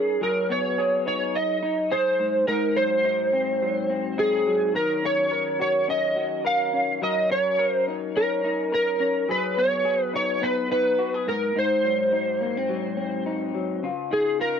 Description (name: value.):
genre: indie pop.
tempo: 106 BPM.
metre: 4/4.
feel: swing 55% on 16ths.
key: unclear.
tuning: A4 = 445 Hz.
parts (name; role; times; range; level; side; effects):
electric slide guitar; melody; 0.0-14.6 s; Ab4 to F5; -22 LUFS; right 1 dB; ensemble chorus.
electric guitar through a small old amp; accompaniment; 0.0-14.6 s; Ab2 to Bb4; -28 LUFS; left 4 dB; wide subtle chorus, warbly pitch drift.
room: light reverb.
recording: dry, close 1970s-style studio recording.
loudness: -21 LUFS.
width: side -7 dB against mid.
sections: 0.0-13.8 A section.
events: none.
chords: 0.2 Cb6/Gb; 2.2 Ab7; 4.7 Ebm7; 9.3 Cb6/Gb; 11.3 Ab7; 13.8 Db69.